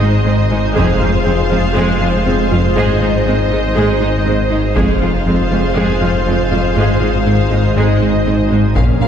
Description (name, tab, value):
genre	cinematic, hybrid orchestral and electronic film score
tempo	120 BPM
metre	4/4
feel	straight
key	unclear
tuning	A4 = 440 Hz
part	warm symphonic violin section	second line	0.0-9.1 s	Bb4 to F5	-21 LUFS	left 2 dB	none
part	rich symphonic viola section	accompaniment	0.0-9.1 s	Ab3 to Ab4	-20 LUFS	right 2 dB	none
part	soft additive organ-like pad	sustained chords	0.0-9.1 s	Ab3 to C5	-19 LUFS	right 1 dB	ensemble chorus, built-in reverb
part	smooth gliding synth bass	riff	0.0-9.1 s	F2 to Bb2	-18 LUFS	left 2 dB	none
part	bright symphonic cello section	bass	0.0-9.1 s	F2 to Bb2	-21 LUFS	right 2 dB	none
part	detuned saw bass	bass	0.0-9.1 s	F1 to Bb1	-19 LUFS	equal	none
part	taiko ensemble	drums	0.8-1.7, 4.8-5.7, 8.8-9.1 s	none	-19 LUFS	equal	none
part	warm symphonic violin section	melody	8.8-9.1 s	F5	-24 LUFS	left 2 dB	none
part	mellow French horn section	sustained chords	8.8-9.1 s	Bb3 to Db4	-22 LUFS	left 7 dB	none
part	clear symphonic double bass section	bass	8.8-9.1 s	Bb1	-21 LUFS	right 3 dB	none
room	wet concert hall reverb, RT60 2.2 s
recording	heard from further back in the room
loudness	-12 LUFS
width	side -8 dB against mid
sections	0.0-8.8 A section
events	none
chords	0.0 Ab; 0.8 Fm; 2.8 Ab; 4.8 Fm; 6.8 Ab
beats	0.26 | 0.76 1.26 1.76 2.26 | 2.76 3.26 3.76 4.26 | 4.76 5.26 5.76 6.26 | 6.76 7.26 7.76 8.26 | 8.76